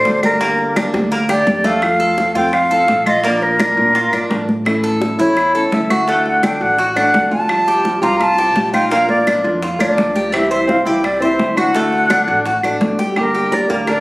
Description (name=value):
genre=latin, Cuban son and guajira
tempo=169 BPM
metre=4/4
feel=straight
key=unclear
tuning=A4 = 440 Hz
part: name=mellow silver concert flute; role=melody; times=0.0-14.0 s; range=Bb4 to Bb5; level=-16 LUFS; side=equal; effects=none
part: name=nylon-string guitar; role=second line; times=0.0-0.9, 7.0-14.0 s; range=G3 to Bb4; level=-24 LUFS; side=right 1 dB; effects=none
part: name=flamenco guitar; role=accompaniment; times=0.0-13.9 s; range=C3 to G4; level=-22 LUFS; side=equal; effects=none
part: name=Cuban tres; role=arpeggios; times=0.0-14.0 s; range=A3 to C5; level=-19 LUFS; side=right 1 dB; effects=none
part: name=upright bass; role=bass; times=0.1-14.0 s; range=F1 to Bb2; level=-26 LUFS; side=equal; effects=none
part: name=bongos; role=percussion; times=0.1-14.0 s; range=none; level=-26 LUFS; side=left 1 dB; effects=none
part: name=congas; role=percussion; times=0.1-14.0 s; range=none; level=-22 LUFS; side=equal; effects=none
part: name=claves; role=percussion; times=0.2-14.0 s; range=none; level=-24 LUFS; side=equal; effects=none
room=light reverb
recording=recorded on a phone in the room, studio reverb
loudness=-13 LUFS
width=side -21 dB against mid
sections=0.0-1.8 A section; 1.8-13.2 B section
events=drum fill 0.8-1.8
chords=0.4 Gm; 1.8 F; 3.2 Bb; 4.7 A; 6.1 D; 7.5 Fsus2; 8.9 Bb; 10.3 C; 11.7 D; 13.2 Gm